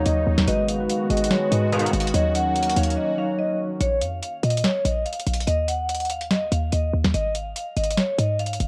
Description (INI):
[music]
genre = hip hop, trap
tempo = 144 BPM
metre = 4/4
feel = half-time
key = Eb minor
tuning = A4 = 440 Hz
[part]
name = vibraphone with hard mallets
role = melody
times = 0.0-8.7 s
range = Db5 to Gb5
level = -28 LUFS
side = equal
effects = low-pass filter, cassette tape
[part]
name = mellow tine electric piano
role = accompaniment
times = 0.0-3.8 s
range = Gb3 to Db5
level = -28 LUFS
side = equal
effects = low-pass filter, cassette tape
[part]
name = sweeping resonant pad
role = sustained chords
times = 0.0-3.8 s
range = Db3 to Gb4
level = -34 LUFS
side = equal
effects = chorus, cassette tape
[part]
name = short 808-style bass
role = bass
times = 0.0-8.7 s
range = Ab1 to Bb2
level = -26 LUFS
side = equal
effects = none
[part]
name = booming analog drum machine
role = drums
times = 0.1-8.7 s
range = hi-hat, snare drum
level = -29 LUFS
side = equal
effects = cassette tape
[part]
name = sync-sweep polysynth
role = stabs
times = 1.7-1.9 s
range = Ab2 to Eb3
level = -27 LUFS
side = equal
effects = chorus, cassette tape
[sound]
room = light reverb, digital ambience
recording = home recording on cassette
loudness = -23 LUFS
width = mono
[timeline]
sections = 0.0-3.8 A section; 3.8-8.7 B section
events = break 3.0-3.8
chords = 0.5 Abm7; 2.1 Ebm7; 3.8 Bb5; 5.5 Ebm; 7.1 Dbadd9/Ab (rootless)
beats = 0.06 | 0.47 0.89 1.31 1.73 | 2.14 2.56 2.98 3.39 | 3.81 4.22 4.64 5.06 | 5.47 5.89 6.31 6.72 | 7.14 7.56 7.97 8.39